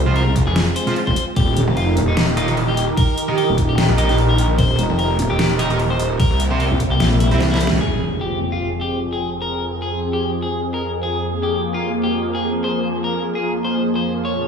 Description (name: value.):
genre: heavy wobble dubstep.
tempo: 149 BPM.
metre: 4/4.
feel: swing 55% on 16ths, half-time.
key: F minor from 7.8 s.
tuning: A4 = 440 Hz.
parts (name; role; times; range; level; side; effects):
supersaw pad; sustained chords; 0.0-14.5 s; F2 to Bb4; -22 LUFS; equal; ensemble chorus, sidechain pumping, low-pass filter.
wobble bass; bass; 0.0-7.8 s; Eb1 to Db2; -18 LUFS; equal; chorus, overdrive.
thick fuzz guitar; stabs; 0.1-7.4 s; C4 to F5; -27 LUFS; right 4 dB; distortion, diffuse ambient delay.
electric guitar at the edge of break-up; melody; 0.2-14.5 s; Eb4 to Db5; -24 LUFS; left 2 dB; diffuse ambient delay.
dubstep drum kit; drums; 0.2-7.8 s; hi-hat, ride cymbal, snare drum; -24 LUFS; left 1 dB; overdrive, small room ambience.
electronic kick drum; drums; 0.4-6.9 s; none; -18 LUFS; equal; overdrive, small room ambience.
snarling distorted saw bass; bass; 0.5-6.7 s; Eb1 to C2; -19 LUFS; equal; distortion, overdrive.
impact; sound effects; 7.8-9.4 s; none; -28 LUFS; equal; none.
room: wet plate reverb, RT60 1.7 s, digital ambience.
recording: dreamy mix soaked in reverb, studio ambience.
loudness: -16 LUFS.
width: side -6 dB against mid.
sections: 0.0-7.8 A section; 7.8-14.5 B section.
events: drop 0.0-7.8; drum fill 7.4-7.8; band accent 7.7; impact 7.8-9.4; filter sweep on supersaw synth 7.8-14.5.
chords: 0.0 Fm; 1.4 Eb; 6.2 C7; 7.8 Fm.